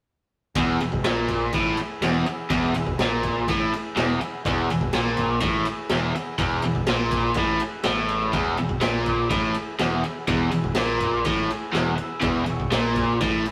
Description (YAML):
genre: garage rock duo or trio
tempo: 123 BPM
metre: 4/4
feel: straight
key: unclear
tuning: A4 = 439 Hz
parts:
  - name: combo organ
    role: sustained chords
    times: 0.6-13.5 s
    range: E4 to B5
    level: -37 LUFS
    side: equal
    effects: spring reverb
  - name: overdriven electric guitar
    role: riff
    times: 0.6-13.5 s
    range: E2 to A#2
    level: -25 LUFS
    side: equal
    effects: none
  - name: growling picked electric bass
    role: bass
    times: 0.6-13.5 s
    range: E1 to A#1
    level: -33 LUFS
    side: equal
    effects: overdrive
  - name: raw garage drum kit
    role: drums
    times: 0.6-13.5 s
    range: kick drum, ride cymbal, snare drum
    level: -31 LUFS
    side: equal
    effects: none
room: moderate stone room reverb, RT60 1.1 s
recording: rough rehearsal-room recording, warm saturation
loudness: -24 LUFS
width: mono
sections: 0.6-13.5 A section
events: transistor combo organ fill 6.9-8.3, 11.3-12.2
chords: 0.6 E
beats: | 0.57 1.05 1.54 2.02 | 2.51 3.00 3.48 3.97 | 4.45 4.94 5.42 5.91 | 6.40 6.88 7.37 7.86 | 8.34 8.83 9.31 9.80 | 10.29 10.77 11.26 11.74 | 12.23 12.72 13.20